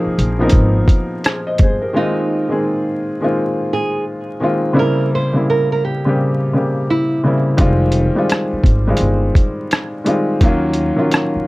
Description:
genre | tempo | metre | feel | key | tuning
lo-fi hip hop | 85 BPM | 4/4 | swing 64% on 16ths | Ab major | A4 = 438 Hz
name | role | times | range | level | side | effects
felt-muted upright piano | accompaniment | 0.0-11.5 s | Db3 to Eb5 | -16 LUFS | left 1 dB | cassette tape, low-pass filter
upright bass | bass | 0.1-1.8, 7.6-11.4 s | F1 to Eb2 | -18 LUFS | equal | none
lo-fi sampler-style drum kit | drums | 0.2-1.8, 7.6-11.3 s | hi-hat, kick drum, rim click | -14 LUFS | equal | none
nylon-string guitar | melody | 2.0-7.2 s | Eb4 to C5 | -21 LUFS | right 2 dB | low-pass filter
room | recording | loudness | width
light reverb | vinyl crackle | -14 LUFS | side -20 dB against mid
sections
0.0-1.9 A section; 1.9-11.5 B section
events
none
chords
0.0 Ab69; 4.8 C7b9; 7.6 Fm9; 10.4 Ebm9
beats
0.53 1.23 | 1.94 2.64 3.35 4.06 | 4.76 5.47 6.17 6.88 | 7.58 8.29 9.00 9.70 | 10.41 11.12

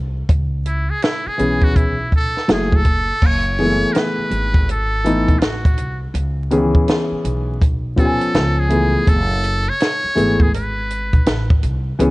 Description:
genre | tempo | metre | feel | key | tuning
hip hop, jazz-hop | 82 BPM | 4/4 | swing 64% on 16ths | F# minor | A4 = 440 Hz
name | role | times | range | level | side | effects
upright bass | bass | 0.0-12.1 s | F#1 to C#2 | -22 LUFS | equal | none
compact cocktail drum kit | drums | 0.3-12.1 s | crash cymbal, hi-hat, kick drum, snare drum | -16 LUFS | equal | vintage 12-bit sampler grit
trumpet with metal mute | melody | 0.7-11.6 s | E4 to C#5 | -22 LUFS | equal | none
dark concert grand piano | accompaniment | 1.4-12.1 s | D#3 to G#5 | -18 LUFS | left 1 dB | none
room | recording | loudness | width
studio ambience | worn, warbling old tape, cassette tape, vinyl crackle, warbly pitch drift, nothing above 10.7 kHz | -15 LUFS | side -21 dB against mid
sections
0.0-3.2 A section; 3.2-12.1 B section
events
none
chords
0.3 C#m7; 2.5 F#m9; 3.2 F#m11; 6.1 C#m7; 8.3 C#7; 9.1 F#m11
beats
| 0.29 1.02 1.76 2.49 | 3.22 3.95 4.68 5.41 | 6.15 6.88 7.61 8.34 | 9.07 9.80 10.54 11.27 | 12.00

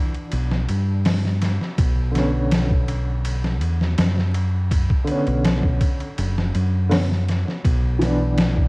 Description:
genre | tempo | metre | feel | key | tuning
trip hop | 82 BPM | 4/4 | straight | B minor | A4 = 439 Hz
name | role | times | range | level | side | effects
dark upright piano | accompaniment | 0.0-8.7 s | D3 to D4 | -25 LUFS | equal | tremolo, cassette tape, tape echo
trip hop sampler-style drum kit | drums | 0.1-8.7 s | hi-hat, kick drum, ride cymbal, snare drum | -22 LUFS | equal | overdrive, studio reverb, cassette tape
deep dub fingered electric bass | bass | 0.3-8.7 s | F#1 to G2 | -20 LUFS | equal | tube saturation
room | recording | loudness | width
digital ambience | home recording on cassette, vinyl crackle | -18 LUFS | side -27 dB against mid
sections
0.0-8.7 A section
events
none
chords
0.0 G6/B; 1.8 Bmadd9; 7.6 G6/B (rootless)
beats
0.33 1.06 | 1.79 2.52 3.25 3.98 | 4.71 5.45 6.18 6.91 | 7.64 8.37

